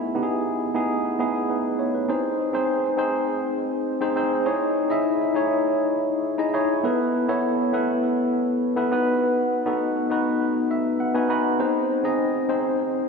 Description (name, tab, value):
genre	pop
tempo	101 BPM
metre	4/4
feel	straight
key	unclear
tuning	A4 = 440 Hz
part	tine electric piano	solo	0.0-13.1 s	B3 to B5	-21 LUFS	equal	medium stereo tremolo, analog delay
room	wet lush hall reverb, RT60 2.9 s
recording	dreamy mix soaked in reverb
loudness	-21 LUFS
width	side -4 dB against mid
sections	0.0-2.1 A section; 2.1-13.1 B section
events	tine electric piano fill 10.4-11.6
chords	0.0 Emaj7; 2.1 G#; 4.5 C#madd9; 6.8 Asus2; 8.9 B; 11.6 G#